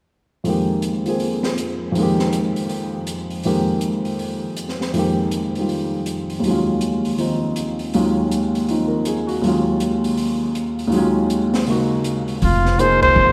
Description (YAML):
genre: modal jazz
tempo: 160 BPM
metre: 4/4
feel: swing 63% on 8ths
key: F phrygian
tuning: A4 = 439 Hz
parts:
  - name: warm upright piano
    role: accompaniment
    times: 0.4-13.3 s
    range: Eb2 to Bb4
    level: -21 LUFS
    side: equal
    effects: none
  - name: open jazz drum kit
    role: drums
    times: 0.4-13.1 s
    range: hi-hat, kick drum, ride cymbal, snare drum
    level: -32 LUFS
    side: equal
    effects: none
  - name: mellow trumpet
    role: melody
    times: 12.4-13.3 s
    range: F4 to C5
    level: -16 LUFS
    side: equal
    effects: none
  - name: upright bass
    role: bass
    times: 12.4-13.3 s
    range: F1 to Ab1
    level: -20 LUFS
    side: equal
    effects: none
room: wet cathedral reverb, RT60 5.2 s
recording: recorded in a church or concert hall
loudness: -20 LUFS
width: mono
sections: 0.5-12.4 A section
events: band accent 13.0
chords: 0.5 Fm11; 6.4 Ebm11; 12.4 Fm11